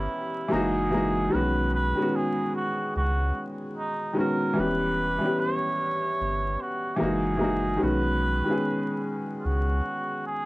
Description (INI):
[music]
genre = lo-fi hip hop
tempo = 74 BPM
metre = 4/4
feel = swing 59% on 16ths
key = B major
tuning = A4 = 439 Hz
[part]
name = trumpet with cup mute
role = melody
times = 0.0-10.5 s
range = D#4 to C#5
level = -29 LUFS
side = right 1 dB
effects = low-pass filter
[part]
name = felt-muted upright piano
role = accompaniment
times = 0.0-10.5 s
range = D#3 to A#4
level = -26 LUFS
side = left 1 dB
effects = low-pass filter
[part]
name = soft dub sub bass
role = bass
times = 0.0-9.8 s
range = E1 to C#2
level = -29 LUFS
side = equal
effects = none
[sound]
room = light reverb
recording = vinyl crackle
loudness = -24 LUFS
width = side -20 dB against mid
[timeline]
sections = 0.0-10.5 A section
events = none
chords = 0.0 Em6; 0.5 F#13; 1.3 B69; 4.6 Em6; 7.0 F#13; 7.8 B69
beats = 0.52 | 1.33 2.14 2.95 3.76 | 4.57 5.38 6.19 7.00 | 7.81 8.62 9.43 10.24